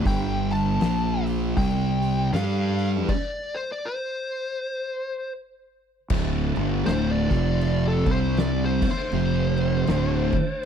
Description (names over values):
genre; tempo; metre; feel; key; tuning
stoner and doom metal; 79 BPM; 4/4; swing 60% on 8ths; D minor; A4 = 440 Hz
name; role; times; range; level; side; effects
tonewheel organ; sustained chords; 0.0-10.7 s; C3 to D5; -37 LUFS; equal; slow rotary speaker, chorus vibrato
thick fuzz guitar; riff; 0.0-10.3 s; D2 to G4; -27 LUFS; left 10 dB; distortion
thick fuzz guitar; riff; 0.0-10.3 s; D2 to G4; -26 LUFS; right 12 dB; distortion
fuzz lead guitar; melody; 0.1-10.7 s; A4 to A5; -29 LUFS; left 2 dB; distortion, slapback echo
fuzz fingered electric bass; bass; 0.1-10.3 s; D1 to G2; -27 LUFS; equal; overdrive
oversized low-tuned drum kit; drums; 0.1-10.7 s; crash cymbal, hi-hat, kick drum, snare drum; -29 LUFS; equal; none
room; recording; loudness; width
studio ambience; dry, close 1970s-style studio recording; -22 LUFS; side -8 dB against mid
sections
0.0-6.1 A section; 6.1-10.7 B section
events
stop 3.1-6.1; lead electric guitar solo 6.1-10.7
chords
0.1 G5; 0.8 Bb5; 1.6 C5; 2.3 G5; 3.5 N.C.; 6.1 D5; 7.2 F5; 8.0 C5; 8.8 D5; 9.1 F5; 9.9 D5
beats
| 0.06 0.82 1.58 2.33 | 3.09 3.85 4.60 5.36 | 6.11 6.87 7.62 8.38 | 9.13 9.88 10.63